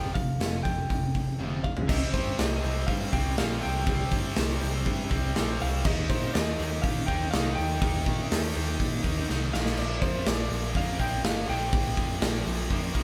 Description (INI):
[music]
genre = hard rock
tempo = 122 BPM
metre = 4/4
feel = straight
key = C minor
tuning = A4 = 443 Hz
[part]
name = lightly driven lead guitar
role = melody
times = 0.0-12.9 s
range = C5 to G5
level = -37 LUFS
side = equal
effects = none
[part]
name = distorted electric guitar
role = riff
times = 0.0-13.0 s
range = F2 to Eb4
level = -39 LUFS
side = equal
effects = overdrive
[part]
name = high-gain distorted guitar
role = riff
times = 0.0-13.0 s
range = F2 to Eb4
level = -39 LUFS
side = equal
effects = none
[part]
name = overdriven picked electric bass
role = bass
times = 0.0-13.0 s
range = F1 to Bb2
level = -34 LUFS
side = equal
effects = none
[part]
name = big rock drum kit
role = drums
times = 0.1-13.0 s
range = crash cymbal, hi-hat, kick drum, snare drum, toms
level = -31 LUFS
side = equal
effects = none
[part]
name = high-gain distorted guitar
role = riff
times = 1.9-13.0 s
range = Bb2 to Eb4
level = -41 LUFS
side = equal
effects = distortion
[sound]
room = moderate studio reverb, RT60 0.6 s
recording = band playing live in one room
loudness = -28 LUFS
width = mono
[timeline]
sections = 0.0-1.9 A section; 1.9-13.0 B section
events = drum fill 1.4-1.9, 9.3-9.8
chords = 0.0 Fsus2; 1.9 C5; 5.9 Eb; 9.5 Bb